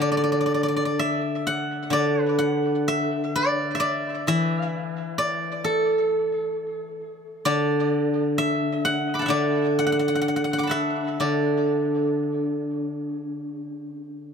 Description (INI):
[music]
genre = chinese traditional, Chinese solo plucked strings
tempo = 54-68 BPM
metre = 4/4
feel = rubato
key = D gong mode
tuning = A4 = 440 Hz
[part]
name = steel-string zither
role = solo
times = 0.0-14.3 s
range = D3 to D6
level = -22 LUFS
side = equal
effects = tape echo
[sound]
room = moderate studio reverb, RT60 0.5 s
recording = close, detailed microphones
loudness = -21 LUFS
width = side -6 dB against mid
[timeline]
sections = 0.0-14.3 A section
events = none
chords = none